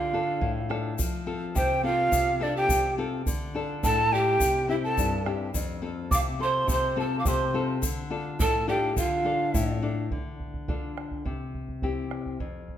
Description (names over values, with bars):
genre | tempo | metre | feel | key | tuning
andean folk, Andean ensemble | 105 BPM | 2/4 | straight | D minor | A4 = 440 Hz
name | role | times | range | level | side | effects
mellow quena | melody | 0.0-9.8 s | D5 to D6 | -27 LUFS | right 1 dB | none
breathy pan flute | second line | 0.0-9.8 s | D4 to F5 | -30 LUFS | right 3 dB | none
nylon-string guitar | accompaniment | 0.0-12.8 s | F2 to A4 | -30 LUFS | left 4 dB | none
bombo | percussion | 0.4-12.8 s | none | -31 LUFS | right 1 dB | none
tube shaker | percussion | 1.0-9.7 s | none | -36 LUFS | left 6 dB | none
room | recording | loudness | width
wet recital hall reverb, RT60 1.4 s | minimal, uncompressed stereo recording | -24 LUFS | side -10 dB against mid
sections
1.0-10.1 A section; 10.1-12.8 B section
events
none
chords
0.0 Dm; 1.0 F; 3.3 Dm; 4.4 C; 5.5 F; 7.8 Dm; 11.3 C